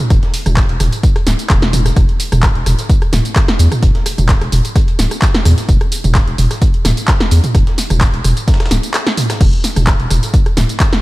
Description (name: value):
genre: acid house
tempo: 129 BPM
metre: 4/4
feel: swing 53% on 16ths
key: unclear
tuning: A4 = 438 Hz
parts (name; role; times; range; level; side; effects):
- punchy analog drum machine; drums; 0.0-11.0 s; crash cymbal, handclaps, hi-hat, rim click, snare drum, tambourine, toms; -16 LUFS; right 1 dB; none
- saturated sub bass; bass; 0.1-10.7 s; D1 to E2; -14 LUFS; equal; sidechain pumping
- dusty soul sampler-style drum kit; drums; 0.1-10.9 s; hi-hat, snare drum; -30 LUFS; equal; overdrive, high-pass filter on hats, high-pass filter on snare, high-pass filter on room
- electronic kick drum; drums; 0.1-10.9 s; none; -13 LUFS; equal; none
room: little or no reverb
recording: none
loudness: -11 LUFS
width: side -19 dB against mid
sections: 0.0-9.4 A section; 9.4-11.0 A section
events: drop 0.0-9.4, 9.4-11.0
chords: none